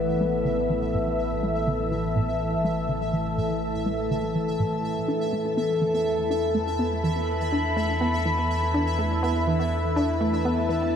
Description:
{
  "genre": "ambient, sequencer-driven space music",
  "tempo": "123 BPM",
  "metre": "4/4",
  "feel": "straight",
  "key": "unclear",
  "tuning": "A4 = 440 Hz",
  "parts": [
    { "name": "evolving wavetable pad", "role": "sustained chords", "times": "0.0-11.0 s", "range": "A2 to B5", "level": "-25 LUFS", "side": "left 1 dB", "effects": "phaser, built-in reverb, shimmer reverb" },
    { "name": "round analog bass", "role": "bass", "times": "0.0-11.0 s", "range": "A1 to E2", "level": "-31 LUFS", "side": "right 1 dB", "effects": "none" },
    { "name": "pulsing gated texture", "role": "texture", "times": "0.0-11.0 s", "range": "E5", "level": "-36 LUFS", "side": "right 2 dB", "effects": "chorus, built-in reverb, shimmer reverb" },
    { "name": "resonant blip pluck", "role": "riff", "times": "0.2-10.8 s", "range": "A2 to D4", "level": "-29 LUFS", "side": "right 1 dB", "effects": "chorus, tape echo" }
  ],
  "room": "wet huge ambient reverb, RT60 8.5 s",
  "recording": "dreamy mix soaked in reverb",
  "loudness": "-23 LUFS",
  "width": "side -8 dB against mid",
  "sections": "0.0-11.0 A section",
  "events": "filter sweep on synth arpeggio sound 0.0-11.0",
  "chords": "0.0 Asus2; 5.1 Esus4",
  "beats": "0.21 0.70 | 1.19 1.67 2.16 2.65 | 3.14 3.62 4.11 4.60 | 5.09 5.58 6.06 6.55 | 7.04 7.53 8.02 8.50 | 8.99 9.48 9.97 10.45 | 10.94"
}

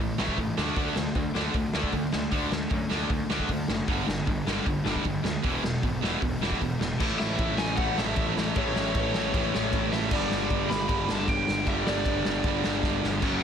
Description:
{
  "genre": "punk rock",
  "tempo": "154 BPM",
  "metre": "4/4",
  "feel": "straight",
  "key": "unclear",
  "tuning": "A4 = 442 Hz",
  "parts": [
    { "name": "distorted electric guitar", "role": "riff", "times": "0.0-13.4 s", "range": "E2 to D4", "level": "-32 LUFS", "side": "left 11 dB", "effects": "distortion" },
    { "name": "distorted electric guitar", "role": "riff", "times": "0.0-13.4 s", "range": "E2 to D4", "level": "-31 LUFS", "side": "right 14 dB", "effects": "overdrive" },
    { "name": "fuzz picked electric bass", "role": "bass", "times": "0.0-13.4 s", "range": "E1 to F#2", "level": "-32 LUFS", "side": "equal", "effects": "overdrive" },
    { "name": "raw garage drum kit", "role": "drums", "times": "0.2-13.3 s", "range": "crash cymbal, hi-hat, kick drum, ride cymbal, snare drum", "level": "-29 LUFS", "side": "equal", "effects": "none" },
    { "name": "overdriven semi-hollow guitar", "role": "melody", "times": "7.2-13.0 s", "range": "C#5 to B5", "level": "-32 LUFS", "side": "left 1 dB", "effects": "none" }
  ],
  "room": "light reverb",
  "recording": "dense, heavily limited modern master",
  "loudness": "-24 LUFS",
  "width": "side -8 dB against mid",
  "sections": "0.0-7.0 A section; 7.0-13.4 B section",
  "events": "drum fill 12.8-13.2",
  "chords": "0.0 A5; 0.6 D5; 3.9 G5; 5.4 E5; 7.0 A; 10.1 G5",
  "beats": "0.00 0.39 | 0.78 1.16 1.55 1.94 | 2.33 2.72 3.11 3.50 | 3.89 4.28 4.67 5.06 | 5.45 5.84 6.23 6.62 | 7.01 7.39 7.78 8.17 | 8.56 8.95 9.34 9.73 | 10.12 10.51 10.89 11.28 | 11.67 12.06 12.45 12.84 | 13.23"
}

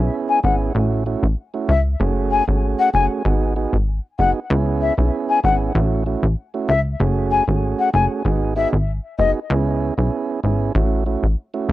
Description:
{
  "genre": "dancehall",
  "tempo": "96 BPM",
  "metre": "4/4",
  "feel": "straight",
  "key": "C# minor",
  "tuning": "A4 = 440 Hz",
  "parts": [
    { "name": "mellow tonewheel organ", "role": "accompaniment", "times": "0.0-11.7 s", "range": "A3 to G#4", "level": "-23 LUFS", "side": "right 5 dB", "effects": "stopped rotary speaker, cassette tape" },
    { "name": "plucky analog bass", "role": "bass", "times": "0.0-11.7 s", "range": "F#1 to C#2", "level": "-19 LUFS", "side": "equal", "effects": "none" },
    { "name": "breathy mellow concert flute", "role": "melody", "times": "0.3-9.3 s", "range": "D#5 to G#5", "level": "-20 LUFS", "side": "left 5 dB", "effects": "cassette tape, analog delay" }
  ],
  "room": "light reverb",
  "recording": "home recording on cassette",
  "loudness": "-17 LUFS",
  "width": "side -15 dB against mid",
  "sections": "0.0-11.7 A section",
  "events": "none",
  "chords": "0.0 C#m7; 0.8 A6; 2.0 F#madd9; 3.3 G#m7; 4.5 C#m7; 5.8 A6; 7.0 F#madd9; 8.3 G#m7; 9.5 C#m7; 10.8 A6",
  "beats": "0.13 0.75 1.38 | 2.00 2.63 3.25 3.88 | 4.50 5.13 5.75 6.38 | 7.00 7.63 8.25 8.88 | 9.50 10.13 10.75 11.38"
}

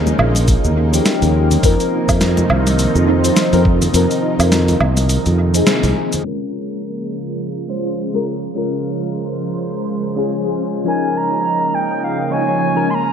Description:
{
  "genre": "sunset chillout",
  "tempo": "104 BPM",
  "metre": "4/4",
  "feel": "swing 57% on 16ths",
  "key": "Bb minor",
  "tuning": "A4 = 440 Hz",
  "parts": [
    { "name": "soft electric-piano-like synth keys", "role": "accompaniment", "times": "0.0-12.9 s", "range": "F3 to Db5", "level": "-20 LUFS", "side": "moving between left 4 dB and right 5 dB", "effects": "chorus, phaser, auto-pan, analog delay" },
    { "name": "lush unison pad", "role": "sustained chords", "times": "0.0-13.1 s", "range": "C3 to C5", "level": "-22 LUFS", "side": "right 1 dB", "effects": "chorus, phaser" },
    { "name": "sustaining fretless electric bass", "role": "bass", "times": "0.0-5.9 s", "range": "Bb1 to F2", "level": "-15 LUFS", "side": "equal", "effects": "none" },
    { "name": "dusty soul sampler-style drum kit", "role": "drums", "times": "0.1-13.1 s", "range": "cabasa, hi-hat, snare drum, woodblock", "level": "-20 LUFS", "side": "right 1 dB", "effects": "overdrive, low-pass filter on hats, low-pass filter on perc, low-pass filter on snare" },
    { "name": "congas", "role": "percussion", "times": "0.1-6.2 s", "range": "none", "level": "-25 LUFS", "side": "left 1 dB", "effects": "none" },
    { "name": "electronic kick drum", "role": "drums", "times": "0.5-3.8 s", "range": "none", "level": "-16 LUFS", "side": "equal", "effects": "overdrive" },
    { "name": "bright reedy wooden flute", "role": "melody", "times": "10.9-13.1 s", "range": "F5 to C6", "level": "-18 LUFS", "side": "right 1 dB", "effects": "analog delay" }
  ],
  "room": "moderate spring reverb, RT60 1.5 s",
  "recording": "echo-heavy mix, low-pass filter",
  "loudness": "-14 LUFS",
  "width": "side -8 dB against mid",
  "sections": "0.0-6.3 A section; 6.3-13.1 B section",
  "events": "kick drops out 3.9-6.3; band accent 5.7; filter sweep on analog synth pad 6.3-13.1; filter sweep 6.3-13.1",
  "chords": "0.0 Eb9sus4; 1.6 F7sus4; 6.3 Bbm7; 10.9 Db69",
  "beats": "0.48 1.06 | 1.64 2.21 2.79 3.37 | 3.94 4.52 5.10 5.67 | 6.25 6.83 7.41 7.98 | 8.56 9.13 9.71 10.29 | 10.87 11.44 12.02 12.60"
}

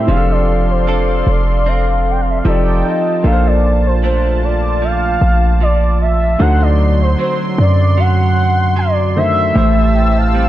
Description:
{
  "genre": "contemporary R&B",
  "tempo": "76 BPM",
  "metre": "4/4",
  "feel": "swing 54% on 16ths",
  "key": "unclear",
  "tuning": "A4 = 440 Hz",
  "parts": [
    { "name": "gliding portamento lead", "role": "melody", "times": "0.0-10.5 s", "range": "C5 to G5", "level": "-18 LUFS", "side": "left 1 dB", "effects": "chorus" },
    { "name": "clear concert grand piano", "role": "accompaniment", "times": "0.0-10.5 s", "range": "A2 to C5", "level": "-21 LUFS", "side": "equal", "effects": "none" },
    { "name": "warm analog pad", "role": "sustained chords", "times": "0.0-10.5 s", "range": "F#3 to E6", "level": "-23 LUFS", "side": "left 1 dB", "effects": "chorus" },
    { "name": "direct-recorded clean electric guitar", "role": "arpeggios", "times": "0.0-10.5 s", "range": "A2 to A4", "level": "-21 LUFS", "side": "right 6 dB", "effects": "wide subtle chorus" },
    { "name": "warm 808-style bass", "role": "bass", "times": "0.1-10.5 s", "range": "F1 to F#2", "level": "-14 LUFS", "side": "equal", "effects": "none" },
    { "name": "celesta", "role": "texture", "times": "0.5-10.5 s", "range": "F4 to D6", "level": "-32 LUFS", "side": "left 3 dB", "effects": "none" }
  ],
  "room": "small room ambience",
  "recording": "dark, warm production",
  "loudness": "-11 LUFS",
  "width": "side -13 dB against mid",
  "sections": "0.1-10.5 A section",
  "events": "none",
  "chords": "0.1 F6; 2.5 F9; 3.2 Bbmaj7; 6.4 D7b9; 9.6 Am7",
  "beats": "| 0.08 0.87 1.66 2.45 | 3.24 4.03 4.82 5.61 | 6.40 7.19 7.98 8.77 | 9.56 10.35"
}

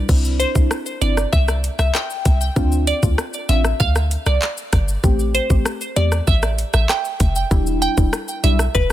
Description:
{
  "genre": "dancehall",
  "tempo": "97 BPM",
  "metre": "4/4",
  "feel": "straight",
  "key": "C major",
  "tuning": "A4 = 440 Hz",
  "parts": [
    { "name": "deep mellow chord stab", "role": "accompaniment", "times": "0.0-8.6 s", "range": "G3 to G4", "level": "-25 LUFS", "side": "left 1 dB", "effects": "chorus, sidechain pumping" },
    { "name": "short 808-style bass", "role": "bass", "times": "0.0-8.9 s", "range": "E1 to E2", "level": "-18 LUFS", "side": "equal", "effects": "none" },
    { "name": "island pop drum kit", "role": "drums", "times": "0.1-8.9 s", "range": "crash cymbal, handclaps, hi-hat, kick drum, rim click, shaker", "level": "-20 LUFS", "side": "equal", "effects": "soft clipping on snare" },
    { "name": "glassy wavetable pluck", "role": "melody", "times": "0.4-8.8 s", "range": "B4 to G5", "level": "-23 LUFS", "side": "right 1 dB", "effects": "chorus, digital delay" }
  ],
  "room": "little or no reverb",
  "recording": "dense, heavily limited modern master",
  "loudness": "-16 LUFS",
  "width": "side -13 dB against mid",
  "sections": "0.1-8.9 A section",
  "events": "none",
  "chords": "0.1 Cadd9; 2.6 Dm7; 5.0 Am7; 7.5 Em7",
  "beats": "| 0.09 0.71 1.33 1.95 | 2.56 3.18 3.80 4.42 | 5.04 5.66 6.27 6.89 | 7.51 8.13 8.75"
}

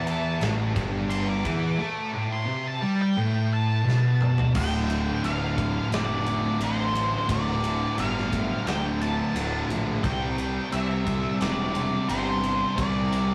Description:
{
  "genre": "stoner and doom metal",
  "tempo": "87 BPM",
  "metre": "4/4",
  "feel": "straight",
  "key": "unclear",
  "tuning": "A4 = 438 Hz",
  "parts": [
    { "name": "octave-fuzz lead guitar", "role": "melody", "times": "0.0-13.3 s", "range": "C5 to D6", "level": "-33 LUFS", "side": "equal", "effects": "distortion, slapback echo" },
    { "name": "high-gain distorted guitar", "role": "riff", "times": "0.0-13.3 s", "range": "D2 to C4", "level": "-34 LUFS", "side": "equal", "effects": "distortion" },
    { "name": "thick fuzz guitar", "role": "riff", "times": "0.0-13.3 s", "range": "D2 to C4", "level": "-35 LUFS", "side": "equal", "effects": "none" },
    { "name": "thick fuzz guitar", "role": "riff", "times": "0.0-13.3 s", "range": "D2 to C4", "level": "-30 LUFS", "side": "equal", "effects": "distortion" },
    { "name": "fuzz picked electric bass", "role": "bass", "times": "0.0-13.3 s", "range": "D1 to E2", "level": "-34 LUFS", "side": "equal", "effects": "overdrive" },
    { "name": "big rock drum kit", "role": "drums", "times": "0.1-13.3 s", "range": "crash cymbal, kick drum, ride cymbal, snare drum, toms", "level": "-35 LUFS", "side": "equal", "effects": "none" }
  ],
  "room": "moderate small room reverb, RT60 0.6 s",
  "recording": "rough rehearsal-room recording, warm saturation",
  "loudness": "-26 LUFS",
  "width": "mono",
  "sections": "0.0-4.5 A section; 4.5-13.3 B section",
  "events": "lead electric guitar solo 0.0-4.5; drum fill 3.9-4.5",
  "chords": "0.0 A5; 4.5 Dm; 10.0 C",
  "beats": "0.42 1.11 | 1.79 2.48 3.17 3.86 | 4.55 5.23 5.92 6.61 | 7.29 7.98 8.66 9.35 | 10.04 10.72 11.40 12.09 | 12.77"
}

